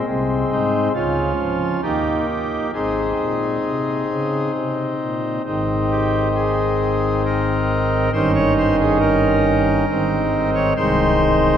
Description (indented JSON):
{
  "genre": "classical, chorale-style piece for pipe organ",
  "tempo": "68 BPM",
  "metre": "3/4",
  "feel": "rubato",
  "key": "Ab major",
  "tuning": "A4 = 440 Hz",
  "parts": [
    { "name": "pipe organ, cornet", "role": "solo", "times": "0.0-11.6 s", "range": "C1 to Db5", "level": "-17 LUFS", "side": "equal", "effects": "none" }
  ],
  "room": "wet cathedral reverb, RT60 4.0 s",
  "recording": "nothing above 10.4 kHz",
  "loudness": "-17 LUFS",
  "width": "side -9 dB against mid",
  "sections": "0.0-5.5 A section; 5.5-11.6 A section",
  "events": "none",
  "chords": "0.1 Ab/C; 1.0 Db; 1.8 Eb; 2.7 Ab; 8.1 Eb7/G; 9.9 Ab; 10.8 Ab/C",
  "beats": "| 0.08 0.95 1.84 | 2.74 3.65 4.56 | 5.46 6.35 7.24 | 8.13 9.01 9.89 | 10.76"
}